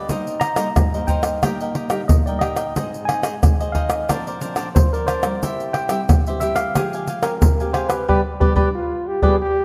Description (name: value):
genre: samba and choro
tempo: 90 BPM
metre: 4/4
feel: straight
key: C minor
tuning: A4 = 440 Hz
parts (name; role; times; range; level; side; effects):
- mellow tine electric piano; melody; 0.0-9.3 s; G4 to Bb5; -27 LUFS; equal; overdrive
- cavaquinho; accompaniment; 0.0-9.3 s; D4 to Ab5; -29 LUFS; equal; none
- nylon-string guitar; accompaniment; 0.0-9.3 s; G2 to G4; -32 LUFS; equal; none
- egg shaker, surdo, pandeiro and tamborim; percussion; 0.1-9.4 s; none; -21 LUFS; equal; none
- warm trombone; second line; 8.8-9.6 s; F4 to Ab4; -23 LUFS; equal; none
room: moderate lush hall reverb, RT60 2.3 s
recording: rough home demo mix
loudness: -20 LUFS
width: mono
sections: 0.0-9.6 A section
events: band accent 8.1-9.6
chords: 0.1 Cm7; 1.4 Eb/Bb; 2.8 Ab; 4.1 Bbadd9; 5.4 C; 6.8 Fmadd9; 8.1 G